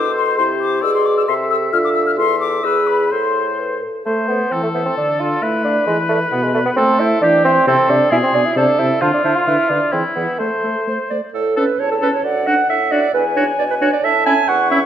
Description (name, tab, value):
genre	quick classical-period movement for wind quintet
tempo	133 BPM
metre	2/4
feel	straight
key	A minor, A major from 11.3 s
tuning	A4 = 442 Hz
part	mellow concert flute	melody	0.0-14.9 s	C5 to F6	-22 LUFS	left 6 dB	none
part	clear oboe	second line	0.0-14.8 s	E4 to E5	-21 LUFS	left 3 dB	none
part	dark French horn	accompaniment	0.0-14.8 s	B2 to B4	-22 LUFS	equal	none
part	mellow clarinet	accompaniment	0.0-14.8 s	D4 to G#5	-21 LUFS	right 5 dB	none
part	mellow bassoon	bass	0.0-14.9 s	D2 to F4	-19 LUFS	right 2 dB	none
room	wet recital hall reverb, RT60 1.7 s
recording	none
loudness	-14 LUFS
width	side -10 dB against mid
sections	0.0-4.1 A section; 4.1-11.3 A section; 11.3-14.9 A section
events	none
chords	0.4 C; 0.8 E7b13/B; 1.3 Am/C; 1.7 Dm; 2.2 Am/E; 2.6 E; 3.1 Am; 5.0 Dm; 5.9 E7; 6.8 Am; 7.7 N.C.; 8.1 E7/B; 8.6 Am/C; 9.0 Dm7; 9.5 Bdim/D; 9.9 E; 10.4 Am; 11.3 A; 12.2 D; 13.1 E7; 14.0 A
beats	| 0.38 0.83 | 1.28 1.73 | 2.18 2.64 | 3.12 3.59 | 4.06 4.52 | 4.97 5.42 | 5.88 6.33 | 6.77 7.22 | 7.67 8.11 | 8.56 9.01 | 9.47 9.93 | 10.40 10.87 | 11.35 11.80 | 12.25 12.70 | 13.14 13.59 | 14.04 14.48